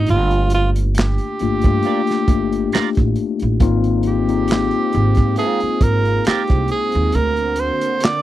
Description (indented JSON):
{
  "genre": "R&B, neo-soul",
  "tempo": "68 BPM",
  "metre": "4/4",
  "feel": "swing 55% on 16ths",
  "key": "unclear",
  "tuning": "A4 = 441 Hz",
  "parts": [
    { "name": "breathy tenor saxophone", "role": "melody", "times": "0.0-8.2 s", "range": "F4 to D5", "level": "-21 LUFS", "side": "right 3 dB", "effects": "none" },
    { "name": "mellow tine electric piano", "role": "accompaniment", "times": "0.0-7.2 s", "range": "A3 to G4", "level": "-20 LUFS", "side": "left 7 dB", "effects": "none" },
    { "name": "upright bass", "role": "bass", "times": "0.0-7.7 s", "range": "G1 to Ab2", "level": "-19 LUFS", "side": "right 1 dB", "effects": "none" },
    { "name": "crunchy breakbeat drum kit", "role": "drums", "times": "0.1-8.2 s", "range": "handclaps, hi-hat, kick drum, snare drum", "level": "-17 LUFS", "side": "right 1 dB", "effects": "none" },
    { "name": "clean electric guitar", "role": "second line", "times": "1.9-6.4 s", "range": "C4 to D5", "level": "-22 LUFS", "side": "right 12 dB", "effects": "wah" },
    { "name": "lush unison pad", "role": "sustained chords", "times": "3.6-8.2 s", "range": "D3 to F#4", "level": "-28 LUFS", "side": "right 2 dB", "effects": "chorus" }
  ],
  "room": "little or no reverb",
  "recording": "dry, close 1970s-style studio recording",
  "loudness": "-15 LUFS",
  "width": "side -14 dB against mid",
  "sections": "0.0-8.2 A section",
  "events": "none",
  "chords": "0.0 Gm7; 3.6 Ab69; 7.1 D7b13"
}